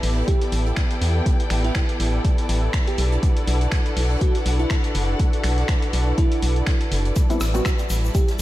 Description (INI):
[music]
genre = deep house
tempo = 122 BPM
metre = 4/4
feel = swing 56% on 16ths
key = unclear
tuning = A4 = 441 Hz
[part]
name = warm analog pad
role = sustained chords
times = 0.0-8.4 s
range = G3 to B4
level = -30 LUFS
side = right 1 dB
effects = chorus, sidechain pumping
[part]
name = organ-like FM bass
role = bass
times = 0.0-8.4 s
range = F#1 to E2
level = -20 LUFS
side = equal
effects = tube saturation, sidechain pumping
[part]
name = dusty soul sampler-style drum kit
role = drums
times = 0.0-8.4 s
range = finger snaps, hi-hat, rim click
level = -30 LUFS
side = equal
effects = none
[part]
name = open jazz drum kit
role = drums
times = 0.0-8.4 s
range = hi-hat, snare drum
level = -40 LUFS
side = right 4 dB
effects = sidechain pumping on hats, high-pass filter on hats, high-pass filter on snare, high-pass filter on room
[part]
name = dark symphonic string section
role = texture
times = 0.0-8.4 s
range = B3 to G5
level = -30 LUFS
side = left 2 dB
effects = sidechain pumping
[part]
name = bell-like FM electric piano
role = melody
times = 0.3-8.3 s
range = E4 to G4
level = -30 LUFS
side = right 2 dB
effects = chorus, tremolo, tape echo
[part]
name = electronic kick drum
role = drums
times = 0.3-8.3 s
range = none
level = -20 LUFS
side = equal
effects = none
[part]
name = egg shaker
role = percussion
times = 7.2-8.4 s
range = none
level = -36 LUFS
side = left 5 dB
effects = none
[part]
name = filtered dub chord stab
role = stabs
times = 7.3-8.4 s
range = G3 to F#4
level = -26 LUFS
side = equal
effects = chorus, sidechain pumping, tape echo
[sound]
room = light reverb, studio reverb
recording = vinyl crackle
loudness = -18 LUFS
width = side -16 dB against mid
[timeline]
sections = 0.0-8.4 A section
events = none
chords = 0.0 Asus2; 3.0 Bm7; 7.2 Am9